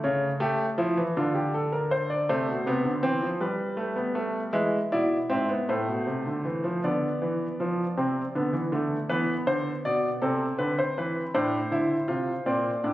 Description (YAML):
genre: classical, baroque-style 3-part fugue for grand piano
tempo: 53 BPM (dotted quarters)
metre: 6/8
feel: straight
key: unclear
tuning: A4 = 443 Hz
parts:
  - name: clear grand piano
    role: solo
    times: 0.0-12.9 s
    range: G#2 to E5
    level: -24 LUFS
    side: equal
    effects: none
room: wet recital hall reverb, RT60 1.6 s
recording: recorded on a phone in the room, club reverb, compression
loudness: -24 LUFS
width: side -15 dB against mid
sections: 0.0-6.8 A section; 6.8-12.9 B section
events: none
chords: 0.0 A7/C#; 1.2 Dm; 2.3 Am; 3.4 G; 4.5 E7; 5.7 Am; 6.8 E5/D; 8.0 Am/C; 9.1 E5; 10.2 Am/C; 11.3 F/A